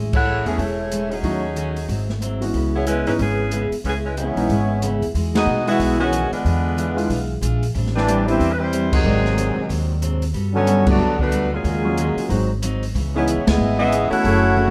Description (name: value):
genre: jazz, big band swing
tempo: 185 BPM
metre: 4/4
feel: swing 62% on 8ths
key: C# minor, E major from 5.1 s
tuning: A4 = 440 Hz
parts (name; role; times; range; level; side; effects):
- picked steel-string acoustic guitar; accompaniment; 0.0-14.7 s; G#2 to A4; -31 LUFS; equal; none
- upright bass; bass; 0.0-14.7 s; E1 to B2; -25 LUFS; equal; none
- warm saxophone section; melody; 0.1-14.7 s; E3 to F#5; -25 LUFS; equal; none
- open jazz drum kit; drums; 0.1-14.7 s; crash cymbal, hi-hat, kick drum, ride cymbal, snare drum, toms; -28 LUFS; equal; none
- warm concert grand piano; accompaniment; 0.5-14.4 s; D3 to D5; -26 LUFS; equal; none
- bright trombone section; second line; 4.2-14.7 s; A#2 to F#4; -26 LUFS; equal; none
room: light reverb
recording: close, detailed microphones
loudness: -20 LUFS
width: mono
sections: 0.0-5.1 A section; 5.1-14.7 B section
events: band accent 0.1, 5.3, 8.9, 10.8, 13.4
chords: 0.0 Amaj7; 1.2 D#m7b5; 1.9 G#7b13; 2.5 C#m7; 5.1 Emaj9; 6.4 E7b9; 7.7 Am11; 9.0 G#7#11; 10.3 Gmaj9; 11.6 D#m11; 12.3 G#7; 12.9 C#m9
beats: 0.26 0.58 0.91 | 1.24 1.56 1.89 2.21 | 2.54 2.87 3.19 3.52 | 3.84 4.17 4.50 4.82 | 5.15 5.47 5.80 6.12 | 6.45 6.77 7.10 7.42 | 7.75 8.07 8.40 8.72 | 9.04 9.37 9.69 10.02 | 10.34 10.67 10.99 11.32 | 11.64 11.96 12.29 12.61 | 12.94 13.26 13.59 13.91 | 14.24 14.56